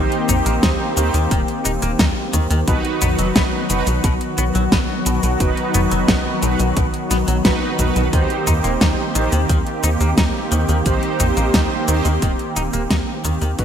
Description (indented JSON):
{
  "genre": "synthwave",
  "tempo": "88 BPM",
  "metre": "4/4",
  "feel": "straight",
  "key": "unclear",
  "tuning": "A4 = 442 Hz",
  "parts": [
    { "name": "warm analog pad", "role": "sustained chords", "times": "0.0-13.6 s", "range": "Eb3 to G4", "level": "-22 LUFS", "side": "left 1 dB", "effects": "chorus, sidechain pumping" },
    { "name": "clean electric guitar", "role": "riff", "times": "0.0-13.6 s", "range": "B2 to Eb4", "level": "-28 LUFS", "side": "left 3 dB", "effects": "wide subtle chorus, digital delay" },
    { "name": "mellow synth brass", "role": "stabs", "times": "0.0-13.6 s", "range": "Eb4 to C5", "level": "-24 LUFS", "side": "right 4 dB", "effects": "chorus, ping-pong delay" },
    { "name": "tight sequencer bass", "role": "bass", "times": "0.0-13.6 s", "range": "Eb1 to Eb2", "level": "-20 LUFS", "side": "equal", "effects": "tube saturation, sidechain pumping" },
    { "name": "pop drum kit", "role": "drums", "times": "0.1-13.6 s", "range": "hi-hat, shaker, snare drum, toms", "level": "-21 LUFS", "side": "equal", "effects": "overdrive, gated reverb" },
    { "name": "electronic kick drum", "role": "drums", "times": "0.6-13.6 s", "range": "none", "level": "-21 LUFS", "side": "equal", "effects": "overdrive" }
  ],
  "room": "moderate lush hall reverb, RT60 2.2 s",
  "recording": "bright 1980s-style digital production",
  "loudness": "-15 LUFS",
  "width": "side -9 dB against mid",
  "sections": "0.0-13.6 A section",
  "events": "fade-out 11.8-13.6",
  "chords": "0.0 Eb6; 2.7 B; 8.1 Eb6"
}